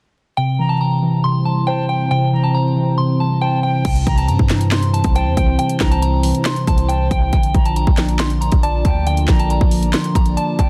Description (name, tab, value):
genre	hip hop, trap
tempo	138 BPM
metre	4/4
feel	half-time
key	unclear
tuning	A4 = 442 Hz
part	soft synth bell	melody	0.4-10.7 s	G5 to C6	-25 LUFS	equal	chorus
part	muted felt-like synth keys	accompaniment	0.4-10.7 s	C3 to D5	-22 LUFS	equal	chorus
part	dark analog pad	sustained chords	1.1-10.7 s	G3 to D5	-29 LUFS	equal	chorus, phaser
part	reedy silver concert flute	second line	0.6-10.7 s	G5 to Bb5	-32 LUFS	equal	tape echo
part	warm 808-style bass	bass	3.8-10.7 s	A1 to G2	-21 LUFS	equal	none
part	trap drum kit	drums	3.8-10.7 s	crash cymbal, handclaps, hi-hat, kick drum, snare drum	-20 LUFS	equal	overdrive
room	digital ambience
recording	dense, heavily limited modern master, vinyl crackle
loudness	-17 LUFS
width	mono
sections	0.4-3.8 A section; 3.8-10.7 B section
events	none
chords	0.4 C; 7.3 Bb